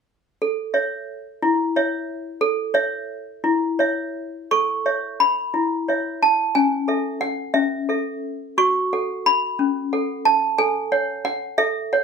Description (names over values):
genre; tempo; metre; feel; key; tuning
classical, lullaby for toy piano; 59 BPM (dotted quarters); 6/8; rubato; A major; A4 = 440 Hz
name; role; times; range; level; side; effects
toy piano; solo; 0.4-12.0 s; C#4 to C#6; -19 LUFS; equal; none
room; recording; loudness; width
light reverb; none; -19 LUFS; side -6 dB against mid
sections
0.4-4.5 A section; 4.5-12.0 B section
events
none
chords
0.4 A; 6.6 A/C#; 8.6 F#m; 10.6 F#m/A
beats
| 0.42 1.43 | 2.42 3.44 | 4.51 5.54 | 6.56 7.55 | 8.59 9.59 | 10.58 11.58